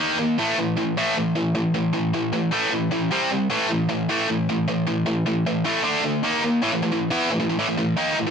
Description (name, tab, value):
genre	metal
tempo	154 BPM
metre	4/4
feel	straight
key	A phrygian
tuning	A4 = 443 Hz
part	tight distorted guitar	solo	0.0-8.3 s	A2 to E4	-20 LUFS	equal	distortion
room	little or no reverb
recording	nothing above 10.9 kHz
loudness	-20 LUFS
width	side -6 dB against mid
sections	0.0-6.6 A section; 6.6-8.3 B section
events	none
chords	0.0 D#5; 0.4 A5; 3.1 C5; 3.5 A5; 5.9 D5; 6.2 D#5; 6.6 A5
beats	0.00 | 0.39 0.78 1.17 1.56 | 1.95 2.34 2.73 3.12 | 3.51 3.90 4.29 4.68 | 5.07 5.46 5.85 6.24 | 6.63 7.02 7.41 7.80 | 8.19